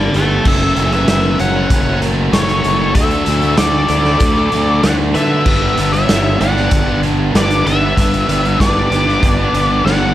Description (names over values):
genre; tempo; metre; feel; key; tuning
classic rock; 96 BPM; 4/4; straight; unclear; A4 = 439 Hz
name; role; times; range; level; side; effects
octave-fuzz lead guitar; melody; 0.0-10.1 s; C#5 to A5; -18 LUFS; left 2 dB; wah, distortion
bluesy overdriven lead guitar; second line; 0.0-10.1 s; A4 to D5; -24 LUFS; right 2 dB; distortion
distorted electric guitar; riff; 0.0-10.1 s; F#2 to D4; -18 LUFS; right 1 dB; distortion
fuzz fingered electric bass; bass; 0.0-10.1 s; F#1 to D3; -17 LUFS; equal; overdrive
raw garage drum kit; drums; 0.1-10.0 s; crash cymbal, hi-hat, kick drum, snare drum; -17 LUFS; equal; none
room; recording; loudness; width
light reverb, small room ambience; none; -11 LUFS; side -13 dB against mid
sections
0.5-10.1 A section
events
drum fill 9.9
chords
0.5 F#m; 3.0 D; 5.5 G